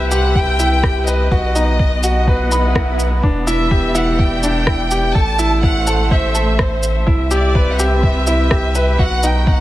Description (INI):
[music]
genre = piano and strings electronica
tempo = 125 BPM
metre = 4/4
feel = straight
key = unclear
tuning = A4 = 439 Hz
[part]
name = rich chamber violin section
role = melody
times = 0.0-9.6 s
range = C5 to A5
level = -21 LUFS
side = equal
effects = none
[part]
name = muted chamber string section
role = sustained chords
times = 0.0-9.6 s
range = A2 to G5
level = -24 LUFS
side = equal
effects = sidechain pumping
[part]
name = bright upright piano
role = riff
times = 0.0-9.6 s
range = D4 to B5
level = -19 LUFS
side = equal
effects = none
[part]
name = round analog bass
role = bass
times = 0.0-9.6 s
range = E1 to C2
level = -18 LUFS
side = equal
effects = sidechain pumping
[part]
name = electronic shaker and rim click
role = drums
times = 0.1-9.3 s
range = none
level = -21 LUFS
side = equal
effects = none
[part]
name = electronic kick drum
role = drums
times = 0.4-9.6 s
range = none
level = -16 LUFS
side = equal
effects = none
[part]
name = swell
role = sound effects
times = 2.5-3.2 s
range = none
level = -30 LUFS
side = right 2 dB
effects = none
[sound]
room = small room ambience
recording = none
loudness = -13 LUFS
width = side -15 dB against mid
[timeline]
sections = 0.0-9.6 A section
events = swell 2.5-3.2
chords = 0.0 Cmaj7; 1.3 B; 3.2 Em7; 5.2 Am; 7.1 Cmaj7; 9.0 B